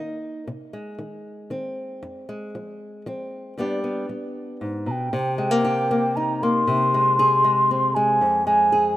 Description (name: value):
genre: acoustic folk duo or small band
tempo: 116 BPM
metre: 3/4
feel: straight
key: C minor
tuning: A4 = 442 Hz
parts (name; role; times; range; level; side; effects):
- nylon-string guitar; accompaniment; 0.0-9.0 s; F2 to Ab4; -25 LUFS; left 1 dB; none
- mellow hollow wooden flute; melody; 4.9-9.0 s; G5 to C6; -19 LUFS; equal; none
room: light reverb, studio ambience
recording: rough home demo mix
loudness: -19 LUFS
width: side -14 dB against mid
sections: 0.0-5.1 A section; 5.1-9.0 B section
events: none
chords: 0.5 Ab/C; 2.0 Fm; 3.6 G; 5.1 Cm7; 6.7 Ab/C; 8.2 Fm